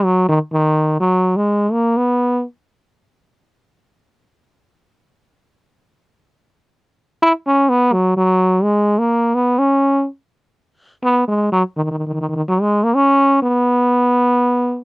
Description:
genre	calypso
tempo	free time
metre	none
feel	none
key	B major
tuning	A4 = 440 Hz
part	trombone with metal mute	solo	0.0-2.4, 7.2-14.8 s	D#3 to E4	-13 LUFS	equal	none
room	light reverb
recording	dry, close 1970s-style studio recording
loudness	-14 LUFS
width	side -28 dB against mid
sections	0.0-14.8 A section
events	none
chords	none

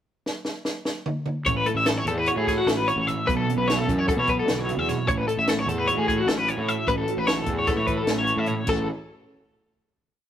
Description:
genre	math rock and midwest emo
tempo	299 BPM (eighths)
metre	9/8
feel	straight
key	A major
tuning	A4 = 441 Hz
part	compact cocktail drum kit	drums	0.3-8.8 s	crash cymbal, hi-hat, kick drum, snare drum, toms	-28 LUFS	equal	none
part	mellow electric guitar	accompaniment	1.5-8.9 s	F#2 to B4	-29 LUFS	right 4 dB	phaser
part	twelve-string electric guitar	arpeggios	1.5-8.9 s	F#4 to E5	-24 LUFS	left 2 dB	tremolo
part	fuzz fingered electric bass	bass	1.5-8.9 s	A1 to B2	-27 LUFS	equal	overdrive
room	light reverb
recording	rough rehearsal-room recording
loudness	-21 LUFS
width	side -10 dB against mid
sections	0.0-1.5 pickup bar; 1.5-8.7 A section; 8.7-10.3 final chord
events	drum fill 0.3-1.5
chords	0.0 N.C.; 1.5 Aadd9; 3.3 B9sus4; 5.1 Aadd9; 6.9 A69; 8.7 A6

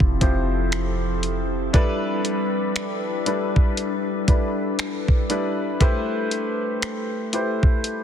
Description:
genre	contemporary R&B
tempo	59 BPM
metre	4/4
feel	swing 58% on 16ths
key	G mixolydian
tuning	A4 = 440 Hz
part	warm baby grand piano	accompaniment	0.0-8.0 s	F3 to C5	-25 LUFS	left 1 dB	none
part	glassy FM pad	sustained chords	0.0-5.8 s	F3 to B4	-28 LUFS	left 2 dB	ensemble chorus, built-in reverb
part	soft 808-style bass	bass	0.0-1.7 s	F1	-25 LUFS	equal	none
part	clean 12-bit digital drum machine	drums	0.0-8.0 s	finger snaps, hi-hat, kick drum	-20 LUFS	equal	soft clipping on snare
room	digital ambience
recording	dense, heavily limited modern master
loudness	-20 LUFS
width	side -9 dB against mid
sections	0.0-8.0 A section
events	none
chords	0.0 Fmaj7; 1.7 G69; 5.8 Am7

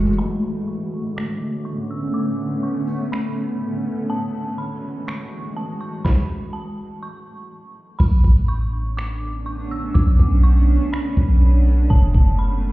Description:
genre	hip hop, atmospheric cloud-rap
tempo	123 BPM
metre	4/4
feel	half-time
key	B dorian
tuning	A4 = 438 Hz
part	dark detuned synth bell	melody	0.0-12.7 s	A5 to E6	-34 LUFS	right 1 dB	chorus, low-pass filter, tape echo
part	granular cloud pad	sustained chords	0.0-12.7 s	D3 to F#4	-24 LUFS	right 1 dB	built-in reverb, low-pass filter
part	soft 808-style bass	bass	0.0-0.2, 8.0-12.7 s	F#1 to B1	-16 LUFS	equal	none
part	smooth R&B drum kit	drums	0.0-12.3 s	crash cymbal, finger snaps, hi-hat, kick drum, snare drum	-18 LUFS	equal	none
room	little or no reverb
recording	heard muffled through a wall, stone room reverb, EQ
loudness	-18 LUFS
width	side -18 dB against mid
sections	0.2-8.0 A section; 8.0-12.7 B section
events	filter sweep 0.2-8.0; hi-hats muted 8.0-12.7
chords	0.2 Bm9; 4.1 F#m9; 8.0 Bm9; 11.9 F#m9

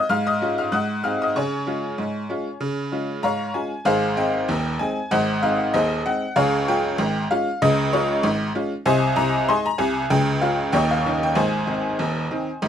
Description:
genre	ragtime piano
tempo	96 BPM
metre	2/4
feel	swing 56% on 16ths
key	Db major, Ab major from 3.9 s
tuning	A4 = 445 Hz
part	tack piano	solo	0.0-12.7 s	Eb1 to Gb6	-19 LUFS	equal	none
room	little or no reverb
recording	close, detailed microphones, vinyl crackle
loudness	-19 LUFS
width	side -9 dB against mid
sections	0.0-3.9 A section; 3.9-12.7 B section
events	none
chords	0.1 Db/Ab; 0.7 Ab7; 1.3 Db; 3.9 Ab; 6.4 Db; 8.9 Ab/C; 10.1 Db; 10.7 Eb9; 11.4 Ab

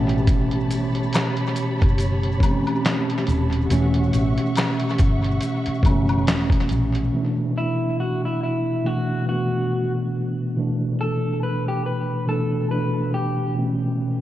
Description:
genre	lo-fi hip hop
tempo	70 BPM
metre	4/4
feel	swing 57% on 16ths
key	E dorian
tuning	A4 = 439 Hz
part	mellow tine electric piano	accompaniment	0.0-14.2 s	B2 to E5	-22 LUFS	equal	medium stereo tremolo, cassette tape, low-pass filter, tape echo
part	warm studio string section	sustained chords	0.0-7.1 s	G4 to C#6	-31 LUFS	equal	low-pass filter
part	vintage muted fingered electric bass	bass	0.0-7.1 s	D#1 to A#1	-23 LUFS	equal	none
part	lo-fi sampler-style drum kit	drums	0.1-7.1 s	handclaps, hi-hat, kick drum, snare drum	-22 LUFS	equal	vintage 12-bit sampler grit, tape echo
part	maracas and woodblock	percussion	0.3-6.9 s	none	-34 LUFS	left 3 dB	tape echo
part	electric guitar through a small old amp	melody	7.6-13.5 s	E4 to B4	-27 LUFS	left 1 dB	low-pass filter, tape echo
room	light reverb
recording	echo-heavy mix, cassette tape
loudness	-19 LUFS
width	side -13 dB against mid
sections	0.0-7.1 A section; 7.1-14.2 B section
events	tine electric piano fill 0.0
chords	0.0 A9; 3.7 Em69; 7.1 E7sus4; 13.6 Aadd9

